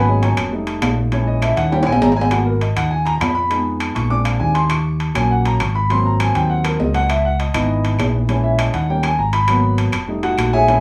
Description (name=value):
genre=Afro-Cuban jazz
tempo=201 BPM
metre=4/4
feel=straight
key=G# minor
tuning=A4 = 440 Hz
part: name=warm concert grand piano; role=accompaniment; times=0.0-10.8 s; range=E3 to D6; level=-21 LUFS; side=equal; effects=none
part: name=fingered electric bass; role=bass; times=0.0-10.8 s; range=E#1 to E#2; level=-21 LUFS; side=equal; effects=none
part: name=timbales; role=percussion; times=0.2-10.8 s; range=none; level=-25 LUFS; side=equal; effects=none
part: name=claves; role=percussion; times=0.4-10.5 s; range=none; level=-33 LUFS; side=equal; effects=none
room=wet small room reverb, RT60 0.5 s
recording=band playing live in one room, studio ambience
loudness=-18 LUFS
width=mono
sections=0.0-2.3 A section; 2.3-10.8 A section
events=grand piano solo 0.0-10.8; drum fill 1.7-2.3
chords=0.0 G#m11; 0.5 F7; 1.1 A#m7b5; 1.7 D#7; 2.3 G#m9; 3.5 Fm7b5; 4.1 A#7; 4.7 D#m7; 5.9 G#7; 7.1 C#m9; 8.3 A#m7b5; 8.9 D#7; 9.5 G#m9; 10.1 F7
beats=0.23 0.52 0.82 | 1.12 1.42 1.72 2.02 | 2.32 2.62 2.91 3.21 | 3.51 3.81 4.11 4.41 | 4.71 5.00 5.30 5.60 | 5.90 6.20 6.50 6.80 | 7.10 7.39 7.69 7.99 | 8.29 8.59 8.89 9.19 | 9.49 9.79 10.09 10.38 | 10.69